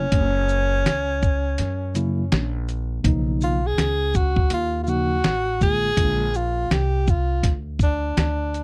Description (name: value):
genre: hip hop, jazz-hop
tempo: 82 BPM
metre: 4/4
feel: swing 62% on 16ths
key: unclear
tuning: A4 = 441 Hz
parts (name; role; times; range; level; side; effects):
- breathy tenor saxophone; melody; 0.0-8.6 s; Db4 to Ab4; -26 LUFS; equal; none
- mellow tine electric piano; accompaniment; 0.0-6.3 s; Db3 to E#4; -27 LUFS; equal; none
- upright bass; bass; 0.0-8.6 s; Gb1 to Gb2; -27 LUFS; equal; none
- dusty soul sampler-style drum kit; drums; 0.1-8.6 s; hi-hat, kick drum, shaker, snare drum; -24 LUFS; equal; none
room: little or no reverb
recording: dry, close 1970s-style studio recording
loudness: -22 LUFS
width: mono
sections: 0.0-8.6 A section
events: break 1.6-3.0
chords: 0.1 Gb; 3.0 Bmaj9#11; 6.0 Bb